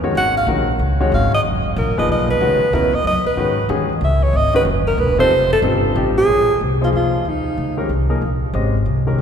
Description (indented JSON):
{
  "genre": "modal jazz",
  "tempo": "186 BPM",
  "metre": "3/4",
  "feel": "swing 63% on 8ths",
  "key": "unclear",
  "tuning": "A4 = 438 Hz",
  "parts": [
    { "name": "warm grand piano", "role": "accompaniment", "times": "0.0-9.2 s", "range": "Bb2 to Eb5", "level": "-21 LUFS", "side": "left 3 dB", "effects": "none" },
    { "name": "upright bass", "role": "bass", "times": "0.0-9.2 s", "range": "Eb1 to Ab2", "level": "-19 LUFS", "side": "equal", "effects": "none" },
    { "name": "breathy alto saxophone", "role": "melody", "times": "0.2-7.9 s", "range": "Eb4 to Gb5", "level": "-18 LUFS", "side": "right 1 dB", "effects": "none" }
  ],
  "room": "wet cathedral reverb, RT60 4.8 s",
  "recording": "recorded in a church or concert hall",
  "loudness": "-15 LUFS",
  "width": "side -7 dB against mid",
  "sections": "0.0-6.3 A section; 6.3-9.2 B section",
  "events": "alto saxophone solo 0.0-6.3",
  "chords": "0.0 Ebm11; 2.4 Dbm11; 5.3 F7; 6.3 Bb9sus4"
}